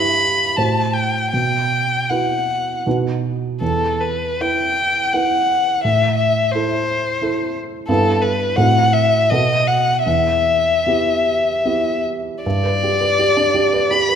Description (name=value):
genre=classical, romantic duo for violin and grand piano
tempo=72-90 BPM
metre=3/4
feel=rubato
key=E minor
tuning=A4 = 440 Hz
part: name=warm violin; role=melody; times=0.0-14.2 s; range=A4 to B5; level=-17 LUFS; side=left 2 dB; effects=none
part: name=dark grand piano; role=accompaniment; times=0.0-14.2 s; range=E2 to C5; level=-20 LUFS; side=right 3 dB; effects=none
room=wet scoring stage reverb, RT60 1.5 s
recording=minimal, uncompressed stereo recording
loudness=-15 LUFS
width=side -8 dB against mid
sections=0.0-12.4 A section; 12.4-14.2 B section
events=none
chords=0.0 Em/G; 0.6 F#dim/A; 1.3 Bsus4; 2.9 B; 3.6 Em; 5.8 Am; 7.9 Em/G; 8.6 F#dim/A; 9.3 B7; 10.1 Em; 12.4 G